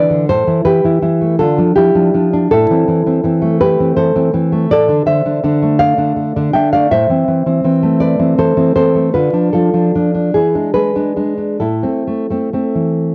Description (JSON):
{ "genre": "romantic piece for solo classical guitar", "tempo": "44-56 BPM (dotted quarters)", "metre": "6/8", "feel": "rubato", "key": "A minor", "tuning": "A4 = 443 Hz", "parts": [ { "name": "nylon-string guitar", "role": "solo", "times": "0.0-13.1 s", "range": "A2 to G5", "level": "-14 LUFS", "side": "equal", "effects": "cassette tape" } ], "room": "light reverb", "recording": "home recording on cassette", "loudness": "-14 LUFS", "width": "mono", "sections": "0.0-13.1 A section", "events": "none", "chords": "0.3 A5; 1.4 Dm; 2.5 Am; 4.7 Dm/A; 6.9 Am; 9.1 Dm6; 10.3 E7; 11.6 Am" }